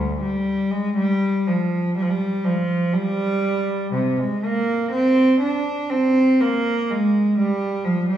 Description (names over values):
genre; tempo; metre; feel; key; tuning
classical, baroque-style suite movement for unaccompanied cello; 61 BPM; 4/4; rubato; unclear; A4 = 439 Hz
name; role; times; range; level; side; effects
rich cello; solo; 0.0-8.2 s; D2 to D4; -18 LUFS; right 1 dB; none
room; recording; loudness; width
wet recital hall reverb, RT60 1.4 s; heard from further back in the room, small room ambience; -18 LUFS; side -10 dB against mid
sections
0.0-8.2 A section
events
none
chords
none